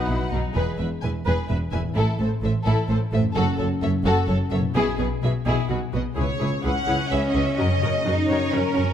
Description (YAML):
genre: cinematic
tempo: 128 BPM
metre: 3/4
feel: straight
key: E major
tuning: A4 = 440 Hz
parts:
  - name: warm symphonic violin section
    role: melody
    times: 0.0-8.9 s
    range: G#4 to G#5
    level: -32 LUFS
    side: left 5 dB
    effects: none
  - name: rich symphonic violin section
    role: second line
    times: 0.0-8.9 s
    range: D#4 to F#5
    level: -29 LUFS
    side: left 2 dB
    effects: none
  - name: rich symphonic viola section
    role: accompaniment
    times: 0.0-8.8 s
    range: C#4 to B4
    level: -31 LUFS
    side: equal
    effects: none
  - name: concert harp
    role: arpeggios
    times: 0.0-8.9 s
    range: E2 to B4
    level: -29 LUFS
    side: left 8 dB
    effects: none
  - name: clear symphonic cello section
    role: bass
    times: 0.1-8.9 s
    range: E2 to D#4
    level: -26 LUFS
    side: right 2 dB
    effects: none
  - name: rich symphonic double bass section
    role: bass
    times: 0.1-8.8 s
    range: E1 to F#2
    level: -25 LUFS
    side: right 2 dB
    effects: none
room: moderate concert hall reverb, RT60 2.2 s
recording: none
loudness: -20 LUFS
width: side -9 dB against mid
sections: 0.6-6.2 A section; 6.2-8.9 B section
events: none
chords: 0.0 B; 0.6 E; 2.0 Am; 3.4 F#m7; 4.8 E/B; 5.7 B; 6.2 C#m7; 7.6 F#